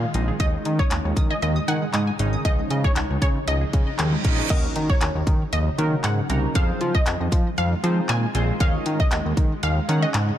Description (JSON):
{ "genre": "dance-pop", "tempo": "117 BPM", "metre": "4/4", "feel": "straight", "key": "Eb dorian", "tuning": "A4 = 440 Hz", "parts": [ { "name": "wide unison pluck", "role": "melody", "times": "0.0-10.4 s", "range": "Db5 to Ab5", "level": "-29 LUFS", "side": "equal", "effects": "ping-pong delay" }, { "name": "granular cloud pad", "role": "sustained chords", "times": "0.0-10.4 s", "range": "Db3 to F4", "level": "-31 LUFS", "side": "equal", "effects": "built-in reverb, sidechain pumping" }, { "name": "tight sequenced synth", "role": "arpeggios", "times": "0.0-4.5 s", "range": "Ab3 to Eb6", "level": "-34 LUFS", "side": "equal", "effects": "chorus, sidechain pumping, ping-pong delay" }, { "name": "fat analog bass", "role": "bass", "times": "0.0-10.3 s", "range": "Ab1 to F3", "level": "-23 LUFS", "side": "equal", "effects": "sidechain pumping" }, { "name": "chorused retro synth keys", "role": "accompaniment", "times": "0.1-10.3 s", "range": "Eb3 to Gb5", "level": "-31 LUFS", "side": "right 1 dB", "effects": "sidechain pumping" }, { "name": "house drum kit", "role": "drums", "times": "0.1-10.3 s", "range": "crash cymbal, handclaps, hi-hat, kick drum", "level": "-23 LUFS", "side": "equal", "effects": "none" }, { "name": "reverse cymbal and impact", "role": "sound effects", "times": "3.8-6.6 s", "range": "none", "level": "-32 LUFS", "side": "right 3 dB", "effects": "none" } ], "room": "light reverb, digital ambience", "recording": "none", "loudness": "-19 LUFS", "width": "side -11 dB against mid", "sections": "0.0-4.5 A section; 4.5-10.4 B section", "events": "reverse cymbal 3.8-4.5; impact 4.5-6.6", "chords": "0.4 Absus4; 2.5 Dbadd9; 4.5 Ebm7; 6.6 Fm7; 8.6 Absus4" }